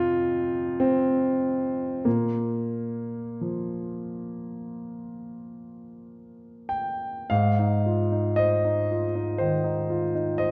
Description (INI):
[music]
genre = classical, impressionist solo piano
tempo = 44-61 BPM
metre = 4/4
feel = rubato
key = Ab major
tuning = A4 = 441 Hz
[part]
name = warm concert grand piano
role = solo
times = 0.0-10.5 s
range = F2 to G5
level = -27 LUFS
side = equal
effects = none
[sound]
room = wet recital hall reverb, RT60 1.2 s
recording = dark, warm production, nothing above 7.8 kHz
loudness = -26 LUFS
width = mono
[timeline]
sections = 0.0-7.3 A section; 7.3-10.5 B section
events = none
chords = 0.0 F5; 2.1 Bb5; 7.3 Ab